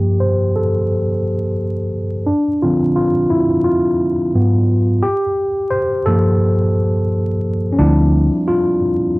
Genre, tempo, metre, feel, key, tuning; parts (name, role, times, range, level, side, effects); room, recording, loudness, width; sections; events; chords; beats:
lo-fi hip hop; 87 BPM; 4/4; swing 64% on 16ths; D minor; A4 = 440 Hz
tine electric piano; accompaniment; 0.0-9.2 s; G2 to C5; -14 LUFS; equal; medium stereo tremolo, cassette tape, low-pass filter
vintage muted fingered electric bass; bass; 7.8-8.3 s; D2; -13 LUFS; equal
light reverb; home recording on cassette, vinyl crackle; -14 LUFS; side -22 dB against mid
0.0-7.8 A section; 7.8-9.2 B section
tine electric piano solo 0.0-7.8, 7.8-9.2; filter sweep on tine electric piano 0.0-7.8
0.0 Gm9; 2.3 Dm7; 4.3 G#m7; 5.0 Gm9; 7.8 Dm11
0.21 0.90 1.59 | 2.28 2.97 3.66 4.35 | 5.04 5.73 6.42 7.11 | 7.79 8.48 9.17